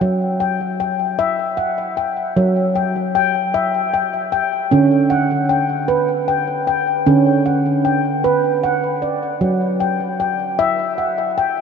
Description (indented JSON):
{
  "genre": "world meditative, meditative tuned percussion",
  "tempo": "51 BPM (dotted quarters)",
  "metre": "6/8",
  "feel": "straight",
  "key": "unclear",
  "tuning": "A4 = 440 Hz",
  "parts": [
    { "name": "handpan", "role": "solo", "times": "0.0-11.6 s", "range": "D3 to G5", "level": "-15 LUFS", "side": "equal", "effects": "ping-pong delay" }
  ],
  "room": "wet huge ambient reverb, RT60 8.3 s",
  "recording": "dreamy mix soaked in reverb, cassette tape",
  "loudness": "-15 LUFS",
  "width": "side -6 dB against mid",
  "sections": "0.0-11.6 A section",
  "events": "none",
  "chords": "0.0 Emadd9/F#; 4.7 D; 9.4 Em9/F#"
}